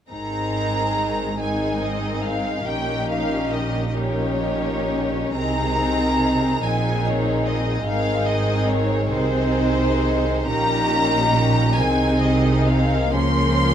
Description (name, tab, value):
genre	classical, slow romantic movement for string orchestra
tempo	41-50 BPM (dotted quarters)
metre	6/8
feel	rubato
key	Ab major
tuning	A4 = 440 Hz
part	rich studio violin section	melody	0.1-13.7 s	C5 to C6	-25 LUFS	equal	none
part	warm studio violin section	second line	0.1-13.7 s	Db4 to Bb4	-26 LUFS	left 1 dB	none
part	rich studio viola section	accompaniment	0.1-13.7 s	Eb3 to Db4	-25 LUFS	left 1 dB	none
part	rich studio double bass section	bass	0.1-13.7 s	Ab1 to Db2	-25 LUFS	right 2 dB	none
part	warm studio cello section	bass	0.1-13.7 s	Ab2 to Db3	-26 LUFS	right 2 dB	none
room	moderate large studio reverb, RT60 1.2 s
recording	dark, warm production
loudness	-18 LUFS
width	side -9 dB against mid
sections	0.1-13.7 A section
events	none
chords	0.1 Ab; 2.7 Eb7/Bb; 5.4 Ab/C; 7.9 Ab; 10.5 Eb7/Bb; 11.8 Ab/C; 13.2 Bbm/Db